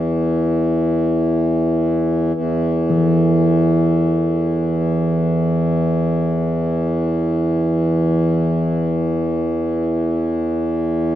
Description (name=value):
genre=world meditative, free-time meditation music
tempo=free time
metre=none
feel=none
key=unclear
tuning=A4 = 440 Hz
part: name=pedal harmonium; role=drone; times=0.0-11.2 s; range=E2 to E3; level=-17 LUFS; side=equal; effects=none
part: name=bronze singing bowl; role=texture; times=2.9-10.6 s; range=E3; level=-21 LUFS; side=equal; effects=none
room=wet scoring stage reverb, RT60 1.6 s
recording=none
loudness=-16 LUFS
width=side -12 dB against mid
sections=0.0-2.3 A section; 2.3-11.2 A section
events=none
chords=none